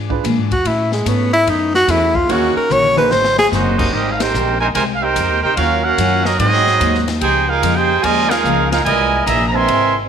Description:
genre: jazz, big band swing.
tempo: 146 BPM.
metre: 4/4.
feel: swing 66% on 8ths.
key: Ab major from 3.9 s.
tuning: A4 = 440 Hz.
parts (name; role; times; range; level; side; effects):
picked steel-string acoustic guitar; accompaniment; 0.0-10.0 s; Ab2 to B4; -25 LUFS; left 12 dB; none.
upright bass; bass; 0.0-10.1 s; Gb1 to Bb2; -20 LUFS; equal; none.
warm concert grand piano; accompaniment; 0.1-3.1 s; Bb3 to C#5; -24 LUFS; right 11 dB; none.
swinging big-band drum kit; drums; 0.1-9.8 s; crash cymbal, hi-hat, kick drum, ride cymbal, snare drum, toms; -25 LUFS; left 4 dB; none.
warm tenor saxophone; melody; 0.5-3.5 s; G#3 to Db5; -14 LUFS; left 1 dB; none.
warm saxophone section; sustained chords; 1.9-3.9 s; C3 to G#4; -25 LUFS; left 1 dB; none.
brilliant trumpet section; melody; 3.5-10.0 s; Ab3 to C6; -16 LUFS; right 2 dB; none.
muted trombone section; second line; 3.5-10.1 s; Bb2 to G4; -21 LUFS; right 10 dB; none.
room: moderate echo chamber reverb, RT60 1.3 s, small room reverb.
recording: 1960s-style stereo with parts hard left and right.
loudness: -13 LUFS.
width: side -8 dB against mid.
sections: 0.0-3.9 A section; 3.9-10.1 B section.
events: tenor saxophone solo 0.0-3.9; drum fill 2.7-3.5; band accent 4.1, 8.2.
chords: 0.0 E7b9; 0.7 Amaj9; 2.3 Ebm7; 3.1 Ab7; 3.9 Abmaj9; 5.6 Ebm9; 6.4 Ab7; 7.2 Db69; 8.9 C7alt.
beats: 0.25 | 0.66 1.07 1.48 1.89 | 2.30 2.71 3.12 3.53 | 3.94 4.35 4.76 5.17 | 5.58 5.99 6.40 6.81 | 7.22 7.63 8.04 8.45 | 8.86 9.27 9.68.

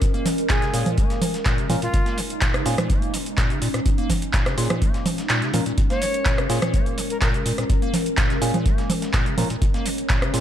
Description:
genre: acid house.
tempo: 125 BPM.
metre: 4/4.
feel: straight.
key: Bb minor.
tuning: A4 = 439 Hz.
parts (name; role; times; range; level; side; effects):
warbly tape-like pad; sustained chords; 0.0-10.4 s; Ab3 to Db5; -28 LUFS; left 1 dB; chorus, built-in reverb, sidechain pumping.
acid bass, square; riff; 0.0-10.4 s; Bb2 to Bb3; -28 LUFS; equal; tube saturation, wide subtle chorus, vintage 12-bit sampler grit, tape echo.
booming analog drum machine; drums; 0.0-10.4 s; congas, handclaps, hi-hat, rim click, shaker; -25 LUFS; right 1 dB; none.
dusty soul sampler-style drum kit; drums; 0.0-10.4 s; hi-hat, snare drum; -37 LUFS; equal; none.
electronic kick drum; drums; 0.0-10.2 s; none; -22 LUFS; equal; none.
breathy bright jazz flute; melody; 0.5-2.2, 5.9-7.3 s; F4 to Db5; -29 LUFS; left 1 dB; ping-pong delay.
percussive organ stab; stabs; 0.7-10.4 s; Bb3 to Bb4; -31 LUFS; right 2 dB; chorus, tape echo.
room: light reverb.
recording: none.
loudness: -19 LUFS.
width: side -10 dB against mid.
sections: 0.0-10.4 A section.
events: kick drops out 5.3-5.8.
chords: 0.0 Bbm7.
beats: | 0.02 0.50 0.98 1.46 | 1.94 2.42 2.90 3.38 | 3.86 4.34 4.82 5.30 | 5.78 6.26 6.74 7.22 | 7.70 8.18 8.66 9.14 | 9.62 10.10.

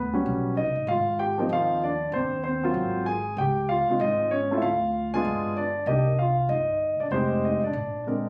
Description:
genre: jazz piano trio.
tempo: 192 BPM.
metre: 4/4.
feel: swing 62% on 8ths.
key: unclear.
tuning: A4 = 440 Hz.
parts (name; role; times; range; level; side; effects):
warm concert grand piano; melody; 0.0-8.3 s; F3 to Ab5; -26 LUFS; equal; none.
upright bass; bass; 0.0-8.3 s; F1 to Eb2; -33 LUFS; equal; none.
room: light reverb.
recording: recorded on a phone in the room, club reverb.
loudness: -25 LUFS.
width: mono.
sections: 0.0-8.3 A section.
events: none.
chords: 0.0 Eb7alt; 0.9 Ab69; 2.1 N.C.; 2.8 Ab13; 3.4 Dbmaj7; 4.6 Dm; 5.3 G7b9; 5.9 Cmadd9; 7.1 Fm7; 7.7 Bb9.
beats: 0.25 0.56 | 0.88 1.19 1.50 1.82 | 2.13 2.44 2.76 3.07 | 3.38 3.69 4.00 4.32 | 4.63 4.94 5.25 5.57 | 5.88 6.19 6.50 6.81 | 7.12 7.43 7.75 8.06.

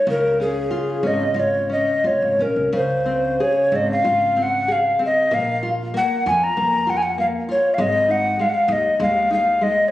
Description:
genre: fado-style ballad.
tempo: 83-99 BPM.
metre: 4/4.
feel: rubato.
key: Db major.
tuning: A4 = 440 Hz.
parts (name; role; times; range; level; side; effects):
mellow hollow tenor recorder; melody; 0.0-9.9 s; Ab4 to Bb5; -18 LUFS; left 1 dB; none.
nylon-string guitar; accompaniment; 0.0-9.9 s; Db3 to Ab4; -26 LUFS; left 1 dB; none.
upright bass; bass; 0.1-9.8 s; F1 to F2; -28 LUFS; equal; none.
room: moderate recital hall reverb, RT60 1.7 s.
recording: recorded on a phone in the room, club reverb, compression.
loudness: -17 LUFS.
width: side -14 dB against mid.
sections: 0.0-2.7 A section; 2.7-9.9 A section.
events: none.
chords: 0.1 Db; 2.7 Dbmaj7; 5.3 Bb5; 7.8 Ab5.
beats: | 0.06 0.70 1.35 2.04 | 2.73 3.40 4.05 4.69 | 5.32 5.94 6.56 7.17 | 7.78 8.39 9.01 9.62.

